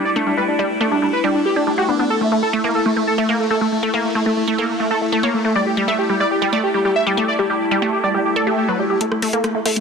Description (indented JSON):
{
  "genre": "psychedelic trance",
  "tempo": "139 BPM",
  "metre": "4/4",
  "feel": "straight",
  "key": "unclear",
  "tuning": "A4 = 441 Hz",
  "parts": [
    { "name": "evolving wavetable pad", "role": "sustained chords", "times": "0.0-9.8 s", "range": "A3 to E4", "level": "-23 LUFS", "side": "left 1 dB", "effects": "phaser, built-in reverb" },
    { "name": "wide unison lead", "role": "melody", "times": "0.1-9.8 s", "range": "A3 to E5", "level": "-19 LUFS", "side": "equal", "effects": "phaser, tape echo" },
    { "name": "wide unison pluck", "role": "riff", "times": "0.2-9.7 s", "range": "F#3 to A4", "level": "-20 LUFS", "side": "moving between left 3 dB and right 4 dB", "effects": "auto-pan, tape echo" },
    { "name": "swell", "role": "sound effects", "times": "8.3-9.0 s", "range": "none", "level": "-27 LUFS", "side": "left 4 dB", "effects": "none" },
    { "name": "drum and bass drum kit", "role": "drums", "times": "9.0-9.8 s", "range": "hi-hat, rim click", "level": "-22 LUFS", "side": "left 1 dB", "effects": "overdrive" }
  ],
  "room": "moderate lush hall reverb, RT60 2.2 s",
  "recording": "dense, heavily limited modern master",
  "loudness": "-16 LUFS",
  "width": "side -6 dB against mid",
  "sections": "0.0-9.0 A section",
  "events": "swell 8.3-9.0",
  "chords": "0.0 G5; 2.1 A5; 5.6 Gsus2; 9.0 A5",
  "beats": "| 0.38 0.81 1.24 1.67 | 2.10 2.53 2.96 3.40 | 3.83 4.26 4.69 5.12 | 5.55 5.99 6.42 6.85 | 7.28 7.71 8.14 8.58 | 9.01 9.44"
}